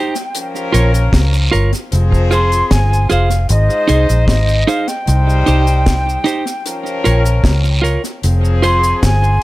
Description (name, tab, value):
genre	roots reggae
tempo	76 BPM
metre	4/4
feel	straight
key	F minor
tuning	A4 = 440 Hz
part	mellow silver concert flute	melody	0.0-9.4 s	Eb5 to C6	-19 LUFS	equal	tape echo
part	clean electric guitar	accompaniment	0.0-8.8 s	Eb4 to Db5	-19 LUFS	right 3 dB	tape echo
part	deep reggae drum kit	drums	0.2-9.2 s	hi-hat, kick drum, snare drum	-19 LUFS	equal	tape echo
part	cabasa and guiro	percussion	0.2-9.4 s	none	-27 LUFS	right 2 dB	none
part	warm horn section	second line	0.4-9.4 s	F3 to C5	-22 LUFS	left 3 dB	tape echo
part	vintage muted fingered electric bass	bass	0.7-9.4 s	F1 to Db2	-13 LUFS	equal	none
room	light reverb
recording	none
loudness	-11 LUFS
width	side -18 dB against mid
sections	0.0-9.4 A section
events	none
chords	0.3 Bbm; 1.9 Fm; 3.5 Ab; 5.1 Cm; 6.7 Bbm; 8.2 Fm